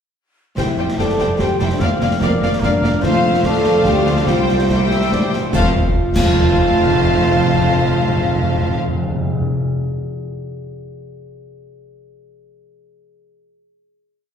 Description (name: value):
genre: cinematic, heroic adventure film score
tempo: 146 BPM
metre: 3/4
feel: straight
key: F major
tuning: A4 = 439 Hz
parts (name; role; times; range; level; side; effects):
- clear symphonic violin section; melody; 0.6-8.8 s; F5 to G5; -25 LUFS; left 4 dB; none
- bright studio violin section; second line; 0.6-8.8 s; C5 to D5; -27 LUFS; left 2 dB; none
- mellow hollow small flute group; second line; 0.6-8.8 s; Bb4 to A5; -25 LUFS; left 1 dB; none
- clear symphonic viola section; accompaniment; 0.6-8.8 s; G3 to Bb3; -26 LUFS; equal; none
- mellow French horn section; sustained chords; 0.6-8.8 s; Bb3 to A4; -20 LUFS; right 1 dB; none
- clear symphonic cello section; bass; 0.6-8.8 s; C2 to F2; -23 LUFS; right 1 dB; none
- rich symphonic double bass section; bass; 0.6-8.8 s; F1 to D2; -24 LUFS; right 1 dB; none
- concert snare drum, clash cymbals and concert bass drum; drums; 0.6-6.3 s; none; -21 LUFS; equal; none
- timpani; percussion; 0.6-9.5 s; F2; -22 LUFS; left 1 dB; none
- mellow cor anglais; second line; 1.0-8.8 s; Bb4 to A5; -26 LUFS; right 2 dB; none
- cymbal swell, concert snare drum, concert bass drum and clash cymbals; percussion; 3.0-6.3 s; none; -25 LUFS; equal; none
room: wet scoring stage reverb, RT60 1.7 s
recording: heard from further back in the room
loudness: -14 LUFS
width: side -7 dB against mid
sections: 0.6-5.5 theme; 5.5-8.0 final chord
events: band accent 5.5-6.0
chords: 0.6 C/F; 1.8 Bb/F; 3.0 F; 4.3 C; 5.5 F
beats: | 0.58 0.99 1.40 | 1.81 2.22 2.63 | 3.04 3.44 3.86 | 4.28 4.70 5.12 | 5.54 5.95 6.36 | 6.78 7.19 7.60